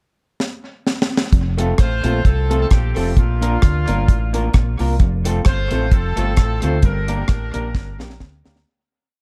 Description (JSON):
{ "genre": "ska", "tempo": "131 BPM", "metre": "4/4", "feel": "swing 55% on 8ths", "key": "F major", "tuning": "A4 = 440 Hz", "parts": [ { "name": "deep reggae drum kit", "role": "drums", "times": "0.4-8.7 s", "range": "hi-hat, kick drum, rim click, snare drum", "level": "-18 LUFS", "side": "equal", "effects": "none" }, { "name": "fingered electric bass", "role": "bass", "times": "1.3-8.6 s", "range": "F1 to D2", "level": "-22 LUFS", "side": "equal", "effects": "none" }, { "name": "vintage hollow-body jazz guitar", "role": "accompaniment", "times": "1.6-8.6 s", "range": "A3 to Bb4", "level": "-28 LUFS", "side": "equal", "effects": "none" }, { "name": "clear upright piano", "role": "stabs", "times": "1.6-8.6 s", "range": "A3 to Bb4", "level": "-32 LUFS", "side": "equal", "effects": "dub echo" }, { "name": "warm horn section", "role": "melody", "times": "1.8-8.2 s", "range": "Bb3 to C5", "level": "-29 LUFS", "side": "equal", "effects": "dub echo" } ], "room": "light reverb", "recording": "dark, warm production", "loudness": "-18 LUFS", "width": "mono", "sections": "0.0-1.3 pickup bar; 1.3-8.7 head", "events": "drum fill 0.4-1.3, 7.7-8.7; fade-out 6.8-8.7", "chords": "0.0 N.C.; 1.3 F; 3.2 Bb; 5.0 F; 6.8 Gm" }